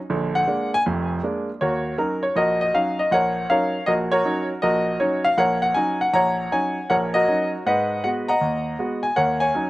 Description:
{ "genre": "solo jazz", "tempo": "158 BPM", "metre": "4/4", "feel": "swing 65% on 8ths", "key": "Eb minor", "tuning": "A4 = 439 Hz", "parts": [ { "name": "clear concert grand piano", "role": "solo", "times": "0.1-9.7 s", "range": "F1 to Bb5", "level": "-19 LUFS", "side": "equal", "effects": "slapback echo" } ], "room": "little or no reverb", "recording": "recorded outdoors, with no room sound", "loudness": "-19 LUFS", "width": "side -17 dB against mid", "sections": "0.0-1.6 A section; 1.6-9.7 B section", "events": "grand piano solo 0.0-1.6", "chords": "0.1 Bb7; 1.6 Ebm7; 7.7 Abm7; 9.2 Ebm7" }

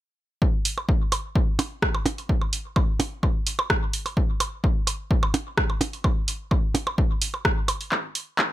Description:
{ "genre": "techno", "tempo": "128 BPM", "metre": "4/4", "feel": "straight", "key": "none", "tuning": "none", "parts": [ { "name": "electronic kick drum", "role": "drums", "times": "0.4-8.5 s", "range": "none", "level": "-23 LUFS", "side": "equal", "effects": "high-pass filter on kick, high-pass filter on room" }, { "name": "punchy analog drum machine", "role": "drums", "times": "0.7-8.5 s", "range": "handclaps, hi-hat, rim click", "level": "-25 LUFS", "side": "right 1 dB", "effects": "none" }, { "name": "percussion blips", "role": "percussion", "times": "0.8-7.8 s", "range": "none", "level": "-27 LUFS", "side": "right 3 dB", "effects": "overdrive, dub echo" } ], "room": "little or no reverb", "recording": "none", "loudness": "-22 LUFS", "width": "side -14 dB against mid", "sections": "0.4-7.9 A section", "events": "drum fill 7.9-8.5", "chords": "none" }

